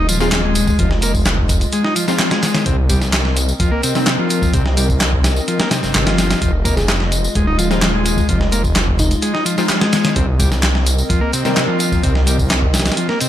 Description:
breakbeat, breaks; 128 BPM; 4/4; straight; F minor; A4 = 439 Hz
dark analog pad; sustained chords; 0.0-13.3 s; Ab3 to Eb5; -24 LUFS; equal; chorus, sidechain pumping
combo organ; riff; 0.0-13.3 s; C3 to Eb4; -20 LUFS; left 1 dB; tube saturation, digital delay
detuned saw bass; bass; 0.0-12.9 s; Eb1 to C2; -18 LUFS; equal
sub drop; sound effects; 0.0-0.8 s; barely audible
dusty soul sampler-style drum kit; drums; 0.1-13.3 s; hi-hat, kick drum, snare drum; -18 LUFS; equal
electronic tambourine and handclaps; drums; 0.1-13.3 s; -22 LUFS; equal
bell-like FM electric piano; melody; 0.2-0.4, 6.8-9.7 s; Eb4 to Ab4; -27 LUFS; equal; chorus, AM radio sound, digital delay
orchestra-hit-like synth stab; stabs; 0.2-13.3 s; Eb3 to F4; -25 LUFS; left 3 dB; built-in reverb, digital delay
little or no reverb; lossy compression artefacts; -13 LUFS; side -11 dB against mid
0.0-13.3 A section
impact 0.0-0.8
0.0 Fm7; 2.7 Cm7; 6.4 Fm7; 10.2 Cm7
0.32 | 0.79 1.26 1.73 2.19 | 2.66 3.13 3.60 4.07 | 4.54 5.01 5.48 5.95 | 6.41 6.88 7.35 7.82 | 8.29 8.76 9.23 9.70 | 10.16 10.63 11.10 11.57 | 12.04 12.51 12.98

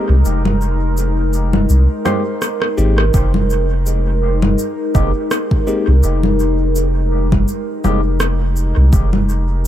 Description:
ambient dub; 83 BPM; 4/4; swing 56% on 16ths; F minor; A4 = 442 Hz
warbly tape-like pad; sustained chords; 0.0-9.7 s; Ab3 to G5; -21 LUFS; left 1 dB; chorus, built-in reverb, phaser
concert harp; arpeggios; 0.0-4.0 s; Ab3 to C5; -34 LUFS; right 2 dB
overdriven tine electric piano; stabs; 0.0-8.0 s; Ab3 to G4; -25 LUFS; left 2 dB; phaser, dub echo
soft dub sub bass; bass; 0.1-9.7 s; F1 to C2; -14 LUFS; equal
electronic cabasa, congas and rim click; drums; 0.3-9.7 s; -20 LUFS; left 1 dB; dub echo
electronic kick drum; drums; 3.1-9.1 s; -16 LUFS; equal
little or no reverb; -13 LUFS; side -12 dB against mid
0.0-3.1 A section; 3.1-9.7 B section
break 0.2-3.1; drum fill 2.1-3.1
0.0 Fm11
| 0.25 0.97 1.70 2.42 | 3.14 3.87 4.59 5.31 | 6.03 6.76 7.48 8.20 | 8.93 9.65

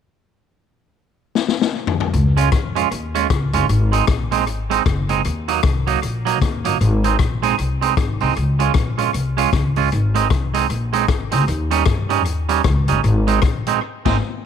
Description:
ska; 154 BPM; 4/4; swing 61% on 8ths; Db major; A4 = 441 Hz
swinging big-band drum kit; drums; 1.4-14.2 s; crash cymbal, hi-hat, kick drum, rim click, snare drum, toms; -21 LUFS; left 4 dB; tape echo
upright bass; bass; 2.1-14.2 s; Gb1 to G2; -19 LUFS; left 1 dB
twangy electric guitar; accompaniment; 2.4-14.2 s; Gb3 to F4; -20 LUFS; right 14 dB
small room ambience; 1960s-style stereo; -16 LUFS; side -8 dB against mid
0.6-2.1 A section; 2.1-14.5 B section
drum fill 1.4-2.1; band accent 13.8-14.5
0.6 N.C.; 2.1 Db; 3.7 Ab; 5.2 Ebm; 6.8 Ab; 8.4 Db; 9.9 Ab; 11.5 Eb7; 13.0 Ab
| 0.58 0.97 1.36 1.75 | 2.13 2.52 2.91 3.30 | 3.69 4.08 4.47 4.86 | 5.25 5.64 6.03 6.42 | 6.81 7.20 7.58 7.97 | 8.36 8.75 9.14 9.53 | 9.92 10.31 10.70 11.09 | 11.48 11.87 12.26 12.65 | 13.04 13.43 13.82

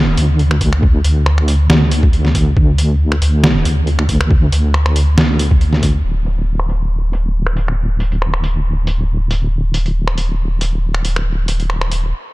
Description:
deep dubstep; 138 BPM; 4/4; swing 54% on 16ths, half-time; A4 = 440 Hz
deep soft wobble bass; bass; 0.0-12.1 s; D1 to D2; -14 LUFS; equal; chorus, tube saturation
trip hop sampler-style drum kit; drums; 0.2-12.0 s; finger snaps, hi-hat, snare drum; -19 LUFS; equal; low-pass filter on snare, low-pass filter on hats
electronic kick drum; drums; 0.6-5.9 s; -13 LUFS; equal
digital ambience; dark, warm production; -13 LUFS; side -20 dB against mid
0.0-6.0 A section; 6.0-12.3 B section
filter sweep on drum 6.0-12.3; stop 12.1
0.39 | 0.83 1.26 1.70 2.13 | 2.57 3.00 3.44 3.87 | 4.31 4.74 5.17 5.61 | 6.04 6.48 6.91 7.35 | 7.78 8.22 8.65 9.09 | 9.52 9.96 10.39 10.83 | 11.26 11.70 12.13

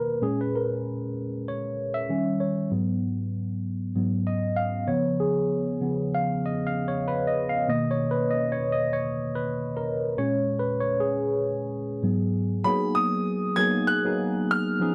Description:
soul; 97 BPM; 4/4; swing 54% on 16ths; G# dorian; A4 = 440 Hz
tine electric piano; accompaniment; 0.0-14.9 s; G#2 to E#5; -27 LUFS; equal; overdrive, phaser
clear baby grand piano; melody; 12.6-14.9 s; B5 to G#6; -28 LUFS; equal
little or no reverb; dry, close 1970s-style studio recording; -26 LUFS; mono
0.0-12.6 A section; 12.6-14.9 B section
tine electric piano solo 0.0-12.6
0.2 A#m7; 2.1 D#7b9; 2.7 G#m7; 4.9 C#7; 7.7 Bmaj7; 10.2 A#m7; 12.0 G#m7; 12.6 G#m9
| 0.22 0.84 1.46 2.08 | 2.71 3.33 3.95 4.57 | 5.19 5.81 6.43 7.05 | 7.67 8.29 8.92 9.54 | 10.16 10.78 11.40 12.02 | 12.64 13.26 13.88 14.50

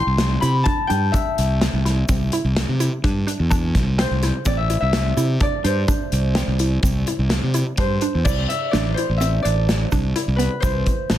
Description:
progressive instrumental, band music in an uneven meter; 126 BPM; 5/4; straight; C major; A4 = 439 Hz
concert harp; melody; 0.0-11.2 s; B4 to C6; -25 LUFS; left 2 dB; plate reverb
hollow square pluck; arpeggios; 0.0-11.2 s; B3 to E4; -28 LUFS; right 2 dB; chorus, plate reverb
fuzz fingered electric bass; bass; 0.1-11.2 s; A1 to C3; -20 LUFS; equal; overdrive
modern studio drum kit; drums; 0.2-11.2 s; crash cymbal, hi-hat, kick drum, snare drum; -23 LUFS; equal
egg shaker; percussion; 0.9-11.2 s; -39 LUFS; right 5 dB
light reverb; dense, heavily limited modern master; -17 LUFS; side -12 dB against mid
0.0-8.3 A section; 8.3-11.2 B section
0.0 Cadd9
0.19 0.67 | 1.14 1.62 2.09 2.57 3.04 | 3.52 3.99 4.46 4.94 5.41 | 5.89 6.36 6.84 7.31 7.78 | 8.26 8.73 9.21 9.68 10.15 | 10.63 11.10

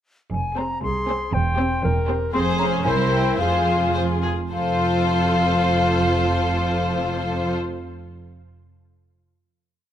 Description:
cinematic, playful, whimsical film cue; 101-120 BPM; 2/4; straight; F minor; A4 = 440 Hz
silver concert flute; second line; 0.3-7.6 s; F5 to C6; -25 LUFS; left 2 dB
dark studio double bass section; bass; 0.3-7.6 s; E1 to C2; -26 LUFS; right 2 dB
rich studio cello section; bass; 0.3-7.6 s; C2 to F2; -26 LUFS; right 2 dB
rich studio violin section; melody; 0.6-7.5 s; Ab4 to C5; -28 LUFS; left 4 dB
warm studio violin section; second line; 0.6-7.6 s; G4 to Bb4; -29 LUFS; left 2 dB
rich studio viola section; accompaniment; 0.6-7.5 s; C4 to F4; -26 LUFS; equal
mellow clarinet; second line; 0.8-4.2 s; Ab4 to C5; -29 LUFS; left 3 dB
light reverb; close, detailed microphones; -19 LUFS; side -10 dB against mid
0.3-4.5 A section; 4.5-6.9 final chord
slowing down 1.8-4.5
0.3 Fm; 1.3 C/E; 2.3 Fm; 2.9 C7; 3.4 Fm
| 0.33 0.83 | 1.33 1.84 | 2.34 2.85 | 3.39 3.95 | 4.53 5.12 | 5.72 6.31

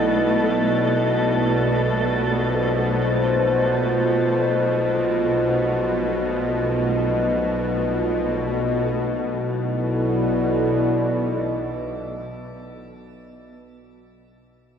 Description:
dark ambient drone; free time; B phrygian; A4 = 439 Hz
dark analog pad; sustained chords; 0.0-13.2 s; B3 to D5; -24 LUFS; equal; chorus, phaser, shimmer reverb
bowed-like drone; drone; 0.0-12.8 s; B1 to B2; -22 LUFS; equal; built-in reverb
flickering grainy texture; texture; 0.0-8.9 s; A3 to A4; -28 LUFS; equal; built-in reverb, shimmer reverb
wet spring reverb, RT60 2.8 s; -19 LUFS; side -7 dB against mid
0.0-8.9 A section; 8.9-12.6 B section
0.0 Bm7; 1.5 Dm; 8.9 Bm7
free time

